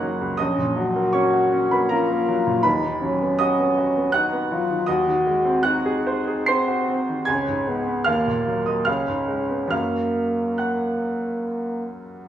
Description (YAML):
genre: classical, romantic duo for French horn and grand piano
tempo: 68-82 BPM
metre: 3/4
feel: rubato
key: F# major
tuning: A4 = 440 Hz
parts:
  - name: clear French horn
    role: melody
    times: 0.0-11.9 s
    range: A#3 to F#4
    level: -22 LUFS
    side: left 1 dB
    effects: none
  - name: bright baby grand piano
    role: accompaniment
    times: 0.0-12.3 s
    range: F#1 to B#6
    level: -22 LUFS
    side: right 2 dB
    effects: none
room: wet recital hall reverb, RT60 1.7 s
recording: small room ambience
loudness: -19 LUFS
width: side -10 dB against mid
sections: 0.0-12.3 A section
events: none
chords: 0.4 F#/A#; 2.7 B/D#; 4.9 G#7/D#; 7.3 C#5; 8.1 D#m; 8.9 C#7; 9.7 F#